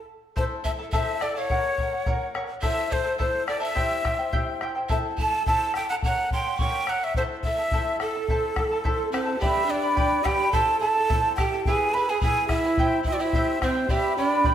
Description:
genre	andean folk, Andean ensemble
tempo	106 BPM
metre	2/4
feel	straight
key	A dorian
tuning	A4 = 440 Hz
part	breathy mellow quena	melody	0.0-14.5 s	A4 to B5	-26 LUFS	equal	none
part	breathy bright pan flute	second line	0.4-14.5 s	C4 to C#6	-30 LUFS	right 4 dB	none
part	charango	accompaniment	0.4-14.5 s	E4 to B5	-28 LUFS	equal	none
part	bombo	percussion	0.4-14.5 s	none	-28 LUFS	left 1 dB	none
room	wet recital hall reverb, RT60 1.3 s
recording	none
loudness	-22 LUFS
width	side -10 dB against mid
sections	0.4-9.4 A section; 9.4-14.5 B section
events	stop 0.0-0.4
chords	0.4 Am; 1.5 F#; 2.6 Am; 3.8 C; 4.9 Am; 6.0 F#; 7.2 Am; 9.4 G; 10.5 Am; 11.6 E; 12.8 C; 13.9 G

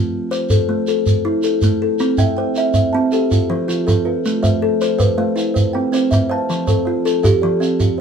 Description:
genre	southern african traditional, mbira-style interlocking cycle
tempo	107 BPM (dotted quarters)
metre	12/8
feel	straight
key	C major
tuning	A4 = 439 Hz
part	kalimba	arpeggios	0.0-7.8 s	F3 to A5	-17 LUFS	left 1 dB	none
part	shekere	percussion	0.3-8.0 s	none	-19 LUFS	right 2 dB	none
part	kalimba	arpeggios	2.2-8.0 s	F3 to A5	-21 LUFS	right 4 dB	none
room	wet studio ambience, RT60 0.5 s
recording	band playing live in one room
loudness	-14 LUFS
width	side -7 dB against mid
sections	0.0-2.0 A section; 2.0-8.0 A section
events	none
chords	0.0 Am; 2.0 C; 3.1 F; 4.2 Am; 5.4 C; 6.5 F

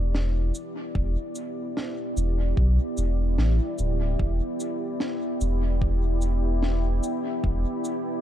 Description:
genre	ambient dub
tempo	74 BPM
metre	4/4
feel	swing 60% on 16ths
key	E minor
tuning	A4 = 442 Hz
part	deep dark ambient pad	sustained chords	0.0-8.2 s	B3 to D5	-29 LUFS	equal	chorus, built-in reverb
part	warm sub bass	bass	0.0-7.7 s	D1 to B1	-23 LUFS	equal	tube saturation
part	snare drum and cabasa	drums	0.1-8.0 s	none	-34 LUFS	equal	dub echo
part	electronic kick drum	drums	1.0-7.6 s	none	-28 LUFS	equal	none
room	little or no reverb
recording	dark, warm production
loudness	-24 LUFS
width	side -11 dB against mid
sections	0.0-8.2 A section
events	none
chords	0.0 Em7

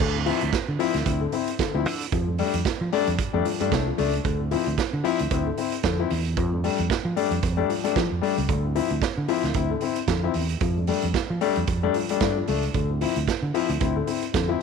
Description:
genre	disco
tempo	113 BPM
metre	4/4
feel	swing 56% on 16ths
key	D minor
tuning	A4 = 437 Hz
part	warm grand piano	accompaniment	0.0-14.6 s	D3 to E4	-25 LUFS	left 10 dB	none
part	fingered electric bass	bass	0.0-14.5 s	C2 to F3	-26 LUFS	right 2 dB	none
part	vintage drum kit	drums	0.0-14.5 s	crash cymbal, hi-hat, kick drum, snare drum	-28 LUFS	right 6 dB	none
room	light reverb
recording	1960s-style stereo with parts hard left and right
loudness	-22 LUFS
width	side -6 dB against mid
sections	0.0-14.6 A section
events	none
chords	0.0 Dm7; 2.1 F69; 4.2 Dm7; 6.4 F69; 8.5 Dm7; 10.6 F69; 12.7 Dm7

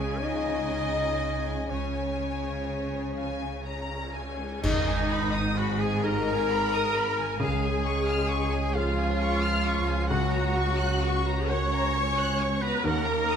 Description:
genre	cinematic, emotional film score for orchestra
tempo	40-45 BPM (dotted quarters)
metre	6/8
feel	rubato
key	unclear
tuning	A4 = 438 Hz
part	warm studio violin section	melody	0.0-13.4 s	D#5 to F#6	-34 LUFS	left 3 dB	none
part	mellow clarinet	second line	0.0-4.1 s	G#4 to D#5	-33 LUFS	left 1 dB	none
part	warm symphonic violin section	second line	0.0-13.4 s	D#4 to D#5	-37 LUFS	left 1 dB	none
part	felt-muted upright piano	accompaniment	0.0-13.4 s	C#2 to A#4	-35 LUFS	left 1 dB	none
part	warm studio viola section	accompaniment	0.0-13.4 s	E#3 to C#5	-33 LUFS	right 1 dB	none
part	warm French horn section	sustained chords	0.0-13.4 s	D#3 to A#4	-35 LUFS	left 4 dB	none
part	concert harp	arpeggios	0.0-13.4 s	G#2 to F#5	-37 LUFS	left 9 dB	none
part	warm studio cello section	bass	0.0-13.4 s	C#2 to C#3	-34 LUFS	right 2 dB	none
part	warm studio double bass section	bass	0.0-13.4 s	G#1 to D#2	-32 LUFS	right 3 dB	none
part	cymbal swell, clash cymbals and concert bass drum	percussion	1.7-6.5 s	none	-34 LUFS	equal	none
part	bright silver concert flute	second line	4.6-13.4 s	D#5 to C#6	-35 LUFS	equal	none
part	warm oboe	second line	4.6-13.4 s	D#4 to C#5	-35 LUFS	right 2 dB	none
room	moderate scoring stage reverb, RT60 1.7 s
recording	none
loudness	-25 LUFS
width	side -8 dB against mid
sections	0.0-4.6 A section; 4.6-13.4 B section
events	band accent 4.6-5.6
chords	0.0 C#; 4.6 G#m; 7.4 C#; 10.1 F#/C#; 12.8 D#m

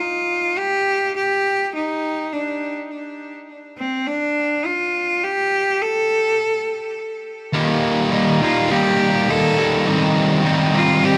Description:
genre	rock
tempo	103 BPM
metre	4/4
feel	straight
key	unclear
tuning	A4 = 441 Hz
part	bright cello	melody	0.0-11.2 s	C4 to A4	-22 LUFS	equal	digital delay
part	thick fuzz guitar	riff	7.5-11.2 s	Eb3 to Eb4	-18 LUFS	equal	distortion
room	moderate large studio reverb, RT60 1.1 s, small room reverb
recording	none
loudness	-19 LUFS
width	mono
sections	0.0-7.6 A section; 7.6-11.2 B section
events	build-up 7.6-11.2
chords	0.0 N.C.; 7.6 Eb; 9.9 Cm/Eb

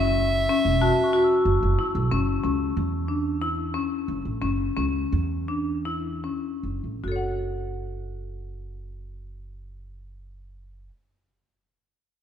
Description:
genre	contemporary instrumental, chamber music in an uneven meter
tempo	146-188 BPM (eighths)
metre	7/8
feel	straight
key	F# minor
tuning	A4 = 439 Hz
part	bright soprano saxophone	melody	0.0-1.4 s	E5	-25 LUFS	right 1 dB	none
part	marimba with hard mallets	arpeggios	0.0-11.0 s	C#4 to F#5	-25 LUFS	left 3 dB	none
part	upright bass	bass	0.0-10.9 s	E1 to E2	-28 LUFS	right 2 dB	none
part	glockenspiel with rubber mallets	texture	0.8-1.8 s	A5 to E6	-33 LUFS	equal	none
room	moderate scoring stage reverb, RT60 1.9 s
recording	dark, warm production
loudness	-22 LUFS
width	side -9 dB against mid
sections	0.0-2.1 A section; 2.1-7.0 B section; 7.0-9.9 C section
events	slowing down 2.1-7.0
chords	0.0 F#m7; 2.1 F#7(no3); 7.0 F#m

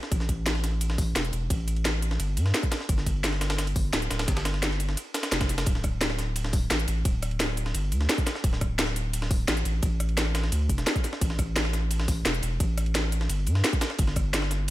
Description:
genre	liquid drum and bass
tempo	173 BPM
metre	4/4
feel	straight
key	unclear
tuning	A4 = 442 Hz
part	breakbeat sampler-style drum kit	drums	0.0-14.7 s	hi-hat, ride cymbal, snare drum	-33 LUFS	right 1 dB	high-pass filter on cymbals, high-pass filter on snare, high-pass filter on hats
part	saturated sub bass	bass	0.1-14.7 s	D1 to G2	-27 LUFS	equal	none
part	drum and bass drum kit	drums	0.1-14.6 s	hi-hat, rim click, snare drum	-30 LUFS	equal	none
part	electronic kick drum	drums	0.1-14.2 s	none	-26 LUFS	equal	none
room	little or no reverb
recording	none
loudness	-24 LUFS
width	side -16 dB against mid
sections	0.0-14.7 A section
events	none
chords	none

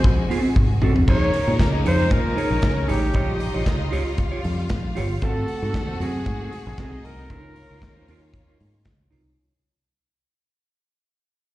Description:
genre	disco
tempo	116 BPM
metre	4/4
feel	straight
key	unclear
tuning	A4 = 440 Hz
part	warm flugelhorn	melody	0.0-8.9 s	G4 to Db5	-28 LUFS	equal	slapback echo
part	rich studio violin section	second line	0.0-9.3 s	Ab3 to Ab5	-35 LUFS	left 2 dB	slapback echo
part	mellow electric guitar	accompaniment	0.0-9.3 s	C4 to Eb5	-27 LUFS	right 3 dB	slapback echo
part	clear studio string section	sustained chords	0.0-9.4 s	C3 to Gb4	-32 LUFS	left 2 dB	none
part	fingered electric bass	bass	0.0-9.3 s	G1 to Bb2	-23 LUFS	equal	none
part	modern studio drum kit	drums	0.0-9.2 s	crash cymbal, handclaps, hi-hat, kick drum, snare drum, toms	-23 LUFS	equal	none
room	little or no reverb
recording	live gig heard through the venue's PA, recital hall reverb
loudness	-19 LUFS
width	side -16 dB against mid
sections	0.0-1.1 A section; 1.1-9.4 B section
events	drum fill 0.6-1.1; fade-out 1.1-9.4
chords	0.0 Ab7b9; 1.1 Bbm7; 3.1 Eb9/Bb; 5.2 Ab7b9; 7.3 Db69

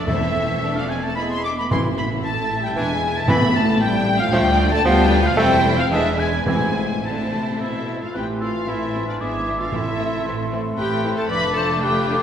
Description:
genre	quick classical-period movement for symphony orchestra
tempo	104-117 BPM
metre	3/4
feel	rubato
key	A minor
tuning	A4 = 440 Hz
part	warm studio violin section	melody	0.0-12.2 s	D5 to D6	-26 LUFS	left 3 dB	none
part	clear clarinet	second line	0.0-12.2 s	A3 to B4	-29 LUFS	left 1 dB	none
part	rich studio violin section	second line	0.0-12.2 s	C4 to E5	-31 LUFS	equal	none
part	warm oboe	second line	0.0-12.2 s	F4 to D6	-28 LUFS	right 1 dB	none
part	warm bassoon	accompaniment	0.0-12.2 s	E3 to A3	-27 LUFS	right 1 dB	none
part	warm studio viola section	accompaniment	0.0-12.2 s	D3 to E4	-30 LUFS	equal	none
part	warm studio cello section	bass	0.0-12.2 s	D2 to D3	-29 LUFS	right 3 dB	none
part	warm studio double bass section	bass	0.0-12.2 s	E1 to D2	-27 LUFS	right 1 dB	none
part	mellow hollow concert flute	second line	0.1-12.2 s	E5 to D6	-27 LUFS	left 1 dB	none
part	mellow French horn section	sustained chords	0.1-12.2 s	E3 to E4	-26 LUFS	left 2 dB	none
part	timpani	percussion	0.1-10.5 s	E2 to A2	-26 LUFS	equal	none
room	wet scoring stage reverb, RT60 1.5 s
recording	recorded in a church or concert hall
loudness	-18 LUFS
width	side -8 dB against mid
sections	0.0-8.2 A section; 8.2-12.2 A section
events	none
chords	0.1 Am/E; 1.2 E; 1.7 A5; 2.8 E7; 3.3 Am; 4.3 Dm; 4.9 Bdim/D; 5.4 Am/E; 5.9 E7; 6.5 Am; 9.2 E7/G#; 9.7 Am; 11.3 Dm/F

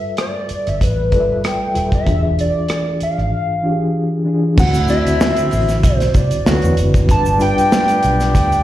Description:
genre	lush 1970s-style soul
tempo	96 BPM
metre	4/4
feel	swing 54% on 16ths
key	unclear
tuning	A4 = 439 Hz
part	hollow square lead	melody	0.0-8.6 s	B4 to A5	-19 LUFS	equal	chorus, slapback echo
part	reed electric piano	accompaniment	0.0-8.6 s	D3 to E5	-19 LUFS	left 1 dB	fast tremolo, slapback echo
part	modern studio drum kit	drums	0.2-8.6 s	crash cymbal, hi-hat, kick drum, rim click, snare drum	-18 LUFS	equal	none
part	vintage muted fingered electric bass	bass	0.5-8.6 s	D#1 to E2	-18 LUFS	equal	none
part	warm horn section	stabs	4.6-8.6 s	F#3 to G4	-24 LUFS	equal	slapback echo
part	tube shaker	percussion	4.6-8.6 s	none	-40 LUFS	right 2 dB	none
room	light reverb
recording	live gig heard through the venue's PA, recital hall reverb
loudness	-13 LUFS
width	side -13 dB against mid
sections	0.0-4.6 A section; 4.6-8.6 B section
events	none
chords	0.0 G13; 2.1 E7b9; 4.6 D9; 6.5 D13; 7.1 G7

